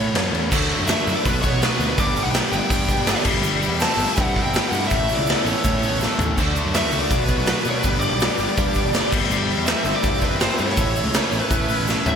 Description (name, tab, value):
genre	indie rock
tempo	164 BPM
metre	4/4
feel	straight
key	D major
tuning	A4 = 441 Hz
part	smooth overdriven lead guitar	melody	0.0-12.2 s	B4 to A5	-25 LUFS	left 1 dB	ping-pong delay
part	fuzz guitar	riff	0.0-12.2 s	G2 to A4	-27 LUFS	right 5 dB	distortion, wide subtle chorus
part	raw garage guitar	riff	0.0-12.2 s	G2 to A4	-27 LUFS	left 8 dB	overdrive
part	fuzz picked electric bass	bass	0.0-12.2 s	G1 to B2	-26 LUFS	equal	overdrive
part	raw garage drum kit	drums	0.2-12.1 s	crash cymbal, hi-hat, kick drum, ride cymbal, snare drum, toms	-21 LUFS	equal	gated reverb
part	egg shaker	percussion	0.5-12.1 s	none	-38 LUFS	right 10 dB	none
part	ensemble organ-string	sustained chords	6.4-12.2 s	F#4 to E6	-35 LUFS	equal	none
room	light reverb, small room ambience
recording	bright 1980s-style digital production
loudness	-18 LUFS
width	side -7 dB against mid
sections	0.5-12.2 A section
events	drum fill 6.0-6.4, 11.9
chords	0.0 Aadd9; 0.5 Dadd9; 1.2 Bm; 2.0 G; 3.3 C6/G; 4.9 Aadd9; 6.4 Dadd9; 7.1 Bm; 7.8 G; 9.1 C6/G; 10.8 Aadd9